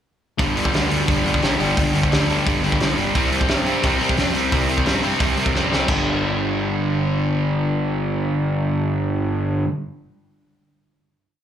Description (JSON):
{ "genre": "punk rock", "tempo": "175 BPM", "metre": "4/4", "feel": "straight", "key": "unclear", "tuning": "A4 = 442 Hz", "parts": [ { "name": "distorted electric guitar", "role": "riff", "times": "0.4-9.7 s", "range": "G2 to C4", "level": "-23 LUFS", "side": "right 8 dB", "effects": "distortion" }, { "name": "sludgy distorted guitar", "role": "riff", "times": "0.4-9.7 s", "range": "G2 to C4", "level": "-23 LUFS", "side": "left 7 dB", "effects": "overdrive, slapback echo" }, { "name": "fuzz picked electric bass", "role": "bass", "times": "0.4-9.6 s", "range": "G1 to G2", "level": "-25 LUFS", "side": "right 1 dB", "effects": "overdrive" }, { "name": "loose indie drum kit", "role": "drums", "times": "0.4-6.0 s", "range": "crash cymbal, hi-hat, kick drum, snare drum", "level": "-22 LUFS", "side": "equal", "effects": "none" } ], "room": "little or no reverb", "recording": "live gig heard through the venue's PA, club reverb", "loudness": "-18 LUFS", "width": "side -9 dB against mid", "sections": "0.4-5.9 verse; 5.9-8.6 final chord", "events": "drum fill 5.5-5.9", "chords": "0.4 G5; 3.1 C5; 5.9 G5", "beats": "| 0.39 0.74 1.08 1.42 | 1.76 2.11 2.45 2.80 | 3.14 3.48 3.83 4.17 | 4.51 4.86 5.20 5.54 | 5.88 6.22 6.56 6.90 | 7.24 7.58 7.91 8.25" }